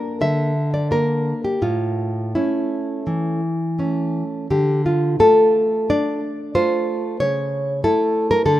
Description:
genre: romantic piece for solo classical guitar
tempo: 82-96 BPM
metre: 4/4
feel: rubato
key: D minor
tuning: A4 = 440 Hz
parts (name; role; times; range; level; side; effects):
- nylon-string guitar; solo; 0.0-8.6 s; A2 to E5; -17 LUFS; equal; none
room: light reverb, small room ambience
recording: rough home demo mix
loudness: -17 LUFS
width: side -14 dB against mid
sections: 0.0-4.5 A section; 4.5-8.6 A section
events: none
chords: 0.0 Gm (rootless); 1.6 A; 4.5 Dm; 7.2 A/C#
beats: 0.21 0.90 | 1.62 2.35 3.08 3.79 | 4.51 5.19 5.90 6.56 | 7.21 7.84 8.48

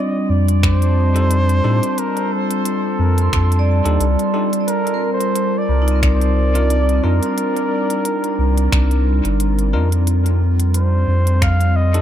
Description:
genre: ambient dub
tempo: 89 BPM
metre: 4/4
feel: swing 56% on 16ths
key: unclear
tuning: A4 = 440 Hz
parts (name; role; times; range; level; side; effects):
- trumpet with bucket mute; melody; 0.0-12.0 s; A4 to F5; -23 LUFS; right 1 dB; tape echo
- warbly tape-like pad; sustained chords; 0.0-12.0 s; G3 to A5; -23 LUFS; left 1 dB; chorus, built-in reverb
- vibraphone with medium hard mallets; arpeggios; 0.0-10.1 s; C4 to C6; -24 LUFS; equal; tape echo
- warm sub bass; bass; 0.3-12.0 s; G1 to A2; -15 LUFS; equal; none
- organic electronic drum kit; drums; 0.5-12.0 s; finger snaps, hi-hat; -26 LUFS; equal; dub echo
- electronic kick drum; drums; 0.6-11.6 s; none; -19 LUFS; equal; none
- bell-like tine electric piano; stabs; 1.2-12.0 s; D4 to Bb4; -29 LUFS; left 2 dB; auto-pan, dub echo
room: moderate spring reverb, RT60 2.5 s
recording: none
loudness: -14 LUFS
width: side -10 dB against mid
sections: 0.0-12.0 A section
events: none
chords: 0.0 F13; 4.7 Cm11; 10.1 Fadd9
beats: 0.63 1.31 | 1.98 2.65 3.33 4.00 | 4.68 5.35 6.03 6.70 | 7.37 8.05 8.72 9.40 | 10.07 10.74 11.42

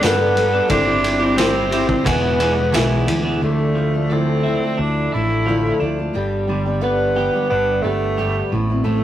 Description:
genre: folk rock and heartland rock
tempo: 88 BPM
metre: 4/4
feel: straight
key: unclear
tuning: A4 = 440 Hz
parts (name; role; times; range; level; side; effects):
- bright tenor saxophone; melody; 0.0-9.0 s; G3 to E4; -20 LUFS; right 1 dB; none
- picked steel-string acoustic guitar; accompaniment; 0.0-9.0 s; E2 to A4; -22 LUFS; left 2 dB; none
- rich chamber string section; sustained chords; 0.0-3.4 s; none; barely audible; none; none
- twelve-string electric guitar; riff; 0.0-9.0 s; E2 to A4; -23 LUFS; right 2 dB; none
- picked electric bass; bass; 0.0-9.0 s; E1 to G2; -23 LUFS; equal; none
- vintage drum kit; drums; 0.0-3.2 s; kick drum, ride cymbal, snare drum; -23 LUFS; equal; none
- tambourine; percussion; 0.0-2.9 s; none; -33 LUFS; right 7 dB; none
room: light reverb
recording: rough rehearsal-room recording, tube saturation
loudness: -16 LUFS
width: side -12 dB against mid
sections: 0.0-3.4 A section; 3.4-9.0 B section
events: none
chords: 0.0 Gadd9; 0.7 C/G; 2.1 E; 3.4 Dmadd9; 6.2 G; 8.5 Amadd9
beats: 0.03 | 0.71 1.39 2.07 2.75 | 3.43 4.11 4.79 5.47 | 6.15 6.83 7.51 8.19 | 8.87

